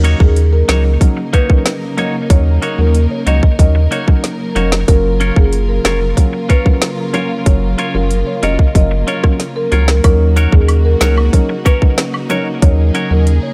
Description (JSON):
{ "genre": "dancehall", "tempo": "93 BPM", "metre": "4/4", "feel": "straight", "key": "Eb minor", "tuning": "A4 = 439 Hz", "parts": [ { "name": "dark baby grand piano", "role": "accompaniment", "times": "0.0-13.3 s", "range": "Gb3 to Bb4", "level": "-24 LUFS", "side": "equal", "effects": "none" }, { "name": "warm studio string section", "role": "sustained chords", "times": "0.0-13.5 s", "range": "Db3 to Bb4", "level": "-25 LUFS", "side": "equal", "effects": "sidechain pumping" }, { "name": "clean electric guitar", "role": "arpeggios", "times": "0.0-13.1 s", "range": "Bb3 to Db5", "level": "-25 LUFS", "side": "equal", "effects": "digital delay" }, { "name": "saturated sub bass", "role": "bass", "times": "0.0-13.4 s", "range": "F1 to Eb2", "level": "-15 LUFS", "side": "equal", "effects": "none" }, { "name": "island pop drum kit", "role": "drums", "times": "0.0-13.4 s", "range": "hi-hat, kick drum, rim click, snare drum", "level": "-13 LUFS", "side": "equal", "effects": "overdrive" }, { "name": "marimba with medium mallets", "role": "melody", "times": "0.2-13.5 s", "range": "Ab4 to Eb5", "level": "-24 LUFS", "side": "equal", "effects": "digital delay" }, { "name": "woodblock and cabasa", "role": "percussion", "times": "10.0-12.4 s", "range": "none", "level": "-28 LUFS", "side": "equal", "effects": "none" } ], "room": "studio reverb", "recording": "none", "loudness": "-13 LUFS", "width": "mono", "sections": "0.0-13.5 A section", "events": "none", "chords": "0.0 Ebm7; 4.9 Gbmaj7; 10.0 Ebm7", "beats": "0.37 1.01 1.66 | 2.30 2.95 3.59 4.24 | 4.88 5.53 6.17 6.82 | 7.46 8.11 8.75 9.40 | 10.04 10.69 11.33 11.98 | 12.62 13.27" }